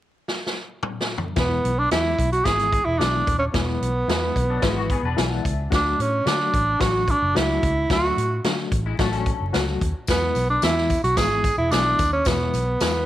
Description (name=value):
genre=uptempo 1960s-style soul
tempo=110 BPM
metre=4/4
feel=straight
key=E mixolydian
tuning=A4 = 440 Hz
part: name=swinging big-band drum kit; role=drums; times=0.3-12.9 s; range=hi-hat, kick drum, snare drum, toms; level=-25 LUFS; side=equal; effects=none
part: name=breathy tenor saxophone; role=melody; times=1.4-13.1 s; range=B3 to G#4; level=-22 LUFS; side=right 2 dB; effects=none
part: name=barky reed electric piano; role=accompaniment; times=1.4-13.1 s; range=D3 to B5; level=-29 LUFS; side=left 7 dB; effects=overdrive, fast tremolo
part: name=vintage muted fingered electric bass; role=bass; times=1.4-13.0 s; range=D#1 to D3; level=-26 LUFS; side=equal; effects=none
part: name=semi-hollow electric guitar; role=riff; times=4.5-9.9 s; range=F#3 to B4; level=-30 LUFS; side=left 8 dB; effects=ensemble chorus
part: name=tambourine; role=percussion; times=10.1-12.9 s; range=none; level=-37 LUFS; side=left 10 dB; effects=none
room=moderate spring reverb, RT60 1.7 s, small room ambience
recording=1960s-style stereo, vinyl crackle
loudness=-19 LUFS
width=side -13 dB against mid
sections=0.0-1.4 A section; 1.4-13.1 B section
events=drum fill 0.3-1.4; reed electric piano fill 4.6-5.7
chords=0.0 N.C.; 1.4 E; 5.7 D; 10.1 E